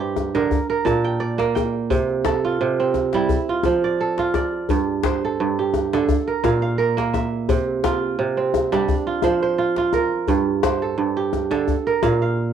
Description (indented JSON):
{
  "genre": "west african traditional, West African string and xylophone music",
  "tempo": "86 BPM",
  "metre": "4/4",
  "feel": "swing 54% on 16ths",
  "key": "G dorian",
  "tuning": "A4 = 441 Hz",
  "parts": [
    { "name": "kora", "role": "arpeggios", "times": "0.0-12.5 s", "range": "G2 to A5", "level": "-19 LUFS", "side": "right 5 dB", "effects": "cassette tape" },
    { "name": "djembe", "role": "percussion", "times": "0.2-12.5 s", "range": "none", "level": "-25 LUFS", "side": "left 6 dB", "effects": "none" }
  ],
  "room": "wet booth ambience, RT60 0.2 s",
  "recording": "home recording on cassette",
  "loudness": "-18 LUFS",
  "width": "side -8 dB against mid",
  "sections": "0.0-4.7 A section; 4.7-12.5 B section",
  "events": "none",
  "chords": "0.0 Gm; 0.5 Bb; 1.9 C5; 3.3 F; 4.7 G5; 6.1 Bb5; 7.5 C; 8.9 F5; 10.3 Gm; 11.7 Bb5"
}